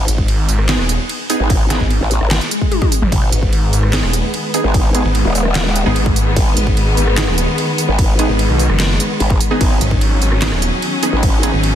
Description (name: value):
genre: heavy wobble dubstep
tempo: 148 BPM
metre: 4/4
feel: half-time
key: G# minor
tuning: A4 = 440 Hz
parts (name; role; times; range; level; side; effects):
- growl bass; bass; 0.0-11.5 s; D#1 to A1; -16 LUFS; equal; chorus, overdrive
- snarling distorted saw bass; bass; 0.1-11.7 s; D#1 to B1; -16 LUFS; equal; distortion, overdrive
- dubstep drum kit; drums; 0.1-11.7 s; handclaps, hi-hat, ride cymbal, rim click, snare drum, toms; -21 LUFS; right 1 dB; none
- electronic kick drum; drums; 0.2-11.3 s; none; -16 LUFS; equal; none
- orchestra-hit-like synth stab; stabs; 0.7-11.5 s; B3 to G#4; -22 LUFS; right 2 dB; built-in reverb, ping-pong delay
- swell; sound effects; 2.4-3.1 s; none; -24 LUFS; left 4 dB; none
- warm symphonic string section; sustained chords; 3.1-11.8 s; D#3 to C#4; -20 LUFS; left 1 dB; vintage 12-bit sampler grit, sidechain pumping
room: light reverb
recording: dense, heavily limited modern master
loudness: -13 LUFS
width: side -10 dB against mid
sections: 0.0-11.8 A section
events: swell 2.4-3.1; drum fill 2.7-3.1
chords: 0.0 G#m